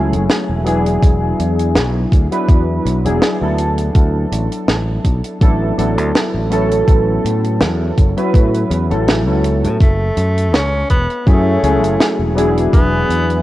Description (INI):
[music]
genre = vaporwave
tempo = 82 BPM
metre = 4/4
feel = swing 54% on 16ths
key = A major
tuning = A4 = 442 Hz
[part]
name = warbly lo-fi synth keys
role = accompaniment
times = 0.0-13.4 s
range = F#3 to B4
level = -17 LUFS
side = equal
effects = lush chorus, vintage 12-bit sampler grit, tape echo
[part]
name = fingered electric bass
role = bass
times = 0.0-13.4 s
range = E1 to A2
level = -17 LUFS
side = equal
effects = tube saturation
[part]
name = tight funk drum kit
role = drums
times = 0.1-13.4 s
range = hi-hat, snare drum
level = -19 LUFS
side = equal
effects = none
[part]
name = electronic kick drum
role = drums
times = 1.0-12.9 s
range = none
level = -11 LUFS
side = equal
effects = none
[part]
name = breathy tenor saxophone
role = melody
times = 9.8-13.4 s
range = A3 to C#4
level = -19 LUFS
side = equal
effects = vintage 12-bit sampler grit, tape echo
[sound]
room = light reverb, small room ambience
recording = worn, warbling old tape, cassette tape, warbly pitch drift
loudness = -12 LUFS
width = side -15 dB against mid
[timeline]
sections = 0.0-13.4 A section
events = none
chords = 0.0 F#m9; 0.7 E9; 3.6 D69; 6.5 A69; 9.8 F#m9; 12.4 E9